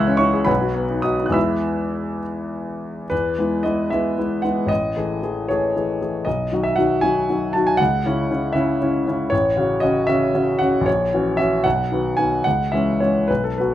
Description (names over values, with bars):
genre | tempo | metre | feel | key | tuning
classical, romantic character piece for solo piano | 66-80 BPM (dotted quarters) | 6/8 | rubato | E major | A4 = 442 Hz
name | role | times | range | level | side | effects
clear grand piano | solo | 0.0-13.7 s | A1 to F#6 | -18 LUFS | left 1 dB | none
room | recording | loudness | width
light reverb | none | -18 LUFS | side -12 dB against mid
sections
0.0-3.1 A section; 3.1-13.7 A section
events
none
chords
0.5 B; 1.4 E; 4.7 Amaj7; 6.3 B; 7.8 C#m; 9.3 F#m/A; 10.9 F#7/A#; 11.6 B; 12.4 C#m